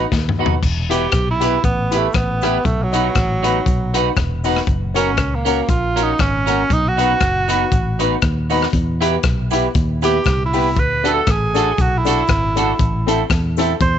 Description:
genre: ska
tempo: 118 BPM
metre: 4/4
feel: swing 56% on 8ths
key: E harmonic minor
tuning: A4 = 440 Hz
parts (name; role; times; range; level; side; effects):
- clean electric guitar; accompaniment; 0.0-13.7 s; C4 to B4; -23 LUFS; right 11 dB; tape echo
- fingered electric bass; bass; 0.0-14.0 s; E1 to E2; -21 LUFS; equal; none
- warm upright piano; stabs; 0.1-13.7 s; A3 to B4; -23 LUFS; left 11 dB; tape echo
- crunchy breakbeat drum kit; drums; 0.1-13.9 s; crash cymbal, hi-hat, kick drum, rim click, snare drum, toms; -21 LUFS; left 2 dB; none
- cabasa; percussion; 0.6-13.9 s; none; -43 LUFS; left 15 dB; none
- clear tenor saxophone; melody; 0.9-14.0 s; F#3 to C5; -20 LUFS; right 3 dB; none
room: light reverb, small room ambience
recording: 1960s-style stereo with parts hard left and right, nothing above 8.0 kHz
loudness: -15 LUFS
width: side -9 dB against mid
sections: 0.6-14.0 A section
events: drum fill 0.1-0.6; tenor saxophone solo 0.6-14.0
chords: 0.0 B; 0.6 Em; 2.7 B; 4.7 F#; 6.7 B; 8.7 Em; 10.8 D; 12.8 Am

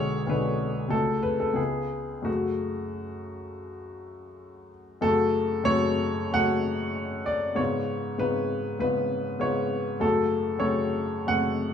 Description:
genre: classical, romantic character piece for solo piano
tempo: 83-102 BPM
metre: 4/4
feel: rubato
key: F# minor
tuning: A4 = 440 Hz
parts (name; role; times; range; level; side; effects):
- clear upright piano; solo; 0.0-11.7 s; B1 to F#5; -25 LUFS; left 1 dB; none
room: moderate large studio reverb, RT60 1.1 s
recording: small room ambience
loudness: -24 LUFS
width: side -8 dB against mid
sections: 0.0-5.0 A section; 5.0-11.7 B section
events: none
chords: 0.0 G#dim/B; 0.9 F#m/C#; 1.6 C#7; 2.3 F#m; 7.6 C#7/G#; 10.0 F#m

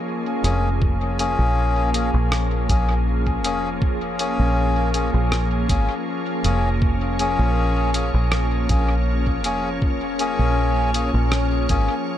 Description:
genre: ambient dub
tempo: 80 BPM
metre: 4/4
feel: swing 53% on 16ths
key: Bb minor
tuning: A4 = 440 Hz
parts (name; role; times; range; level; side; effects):
- soft additive organ-like pad; sustained chords; 0.0-12.2 s; F3 to Eb5; -25 LUFS; equal; ensemble chorus, built-in reverb
- melodica; stabs; 0.4-11.9 s; Bb3 to Ab4; -25 LUFS; left 2 dB; dub echo
- deep dub fingered electric bass; bass; 0.4-11.9 s; F1 to Bb1; -21 LUFS; equal; none
- lo-fi sampler-style drum kit; drums; 0.4-11.9 s; hi-hat, rim click; -28 LUFS; equal; small room ambience, dub echo
- electronic kick drum; drums; 0.8-11.9 s; none; -22 LUFS; equal; small room ambience
room: light reverb, digital ambience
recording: none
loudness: -18 LUFS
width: side -11 dB against mid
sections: 0.0-12.2 A section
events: none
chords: 0.0 Bbm7

